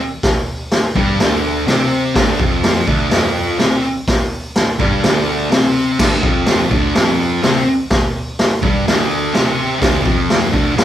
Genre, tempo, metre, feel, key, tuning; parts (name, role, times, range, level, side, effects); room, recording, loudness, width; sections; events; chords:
garage rock duo or trio; 125 BPM; 4/4; straight; A4 = 441 Hz
thick fuzz guitar; riff; 0.0-10.8 s; D2 to C4; -16 LUFS; equal; distortion
raw garage drum kit; drums; 0.2-10.8 s; crash cymbal, hi-hat, kick drum, snare drum; -15 LUFS; equal
light reverb; band playing live in one room; -13 LUFS; side -11 dB against mid
0.0-10.8 A section
0.0 Dm7